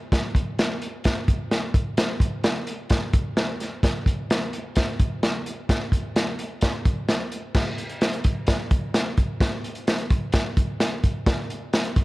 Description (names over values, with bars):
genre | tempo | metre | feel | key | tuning
soul | 129 BPM | 4/4 | straight | none | none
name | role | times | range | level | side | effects
crunchy breakbeat drum kit | drums | 0.1-12.0 s | crash cymbal, hi-hat, kick drum, snare drum | -21 LUFS | equal | none
room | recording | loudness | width
light reverb | dark, warm production | -22 LUFS | side -20 dB against mid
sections
0.0-7.5 A section; 7.5-12.0 B section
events
none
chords
none